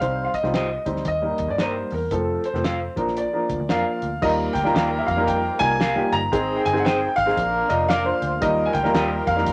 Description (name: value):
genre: uptempo 1960s-style soul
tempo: 114 BPM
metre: 4/4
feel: swing 62% on 8ths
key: Eb major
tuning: A4 = 440 Hz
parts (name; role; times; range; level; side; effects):
- dark grand piano; melody; 0.0-9.5 s; A4 to Bb5; -26 LUFS; equal; none
- dark upright piano; accompaniment; 0.0-9.5 s; F3 to C5; -27 LUFS; equal; none
- vintage muted picked electric bass; bass; 0.0-9.5 s; F1 to G2; -32 LUFS; equal; none
- cloth-damped thuddy drum kit; drums; 0.0-9.5 s; crash cymbal, hi-hat, kick drum, snare drum; -31 LUFS; equal; none
- electric guitar through a small old amp; stabs; 0.5-9.1 s; F4 to F5; -30 LUFS; equal; none
- mellow horn section; second line; 4.2-9.5 s; G3 to Bb4; -31 LUFS; equal; none
- percussive tonewheel organ; sustained chords; 4.2-9.5 s; D3 to Eb4; -38 LUFS; equal; none
room: moderate studio reverb, RT60 0.6 s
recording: none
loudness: -22 LUFS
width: mono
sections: 0.0-4.2 A section; 4.2-9.5 B section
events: none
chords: 0.0 Cm; 1.1 Eb; 2.1 F; 2.9 Bb; 4.2 Ebadd9; 6.3 Ab; 7.4 Bb; 8.4 Ebadd9